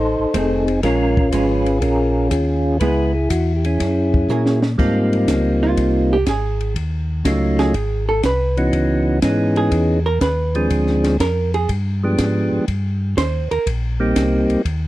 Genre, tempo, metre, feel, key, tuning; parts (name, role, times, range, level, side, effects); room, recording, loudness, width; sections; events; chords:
soul jazz organ trio; 122 BPM; 4/4; swing 69% on 8ths; Ab major; A4 = 440 Hz
percussive tonewheel organ; melody; 0.0-14.6 s; E3 to C5; -18 LUFS; equal; slow rotary speaker
mellow tonewheel organ; bass; 0.0-14.9 s; F1 to Bb2; -20 LUFS; equal; slow rotary speaker
hollow-body jazz guitar; accompaniment; 0.3-13.7 s; Eb3 to C5; -21 LUFS; right 3 dB
compact cocktail drum kit; drums; 0.3-14.8 s; crash cymbal, hi-hat, kick drum, ride cymbal, snare drum; -24 LUFS; equal
small room ambience; dry, close 1970s-style studio recording; -16 LUFS; side -16 dB against mid
0.0-4.8 A section; 4.8-14.9 B section
drum fill 4.3-4.8; hollow-body jazz guitar solo 4.8-14.9
0.0 F7; 0.8 Bbm7; 2.8 Dbm7; 3.8 Gb9; 4.8 Abmaj13; 6.8 Ebm7b5; 7.7 Ab7alt; 8.7 Dbm9; 10.7 Dm7b5; 11.7 G7b9; 12.7 Cm7